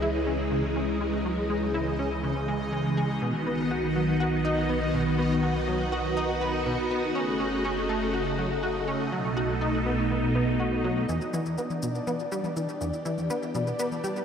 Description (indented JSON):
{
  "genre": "ambient, sequencer-driven space music",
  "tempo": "122 BPM",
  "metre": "4/4",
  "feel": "straight",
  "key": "E minor from 11.1 s",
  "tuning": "A4 = 440 Hz",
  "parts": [
    { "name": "phased string machine", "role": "sustained chords", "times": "0.0-14.2 s", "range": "B2 to G4", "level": "-28 LUFS", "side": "equal", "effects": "ensemble chorus, phaser" },
    { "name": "plucky analog bass", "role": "riff", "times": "0.0-14.2 s", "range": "E2 to F#4", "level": "-30 LUFS", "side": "equal", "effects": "ensemble chorus, tape echo" },
    { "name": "warm sub bass", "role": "bass", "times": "0.0-11.1 s", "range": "F#1 to C#2", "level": "-35 LUFS", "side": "equal", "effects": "none" },
    { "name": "bubbling stepped-filter texture", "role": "texture", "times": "0.0-14.2 s", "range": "D4 to D#5", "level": "-36 LUFS", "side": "equal", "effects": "chorus, built-in reverb" },
    { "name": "electronic shaker and toms", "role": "percussion", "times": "11.1-14.2 s", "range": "none", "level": "-37 LUFS", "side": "left 4 dB", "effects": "tape echo" }
  ],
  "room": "wet lush hall reverb, RT60 2.6 s",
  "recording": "dreamy mix soaked in reverb, cassette tape",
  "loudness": "-25 LUFS",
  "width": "side -7 dB against mid",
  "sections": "0.0-11.1 A section; 11.1-14.2 B section",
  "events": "none",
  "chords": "0.0 C#m; 3.2 B; 7.2 F#m; 9.1 B7; 11.1 Em"
}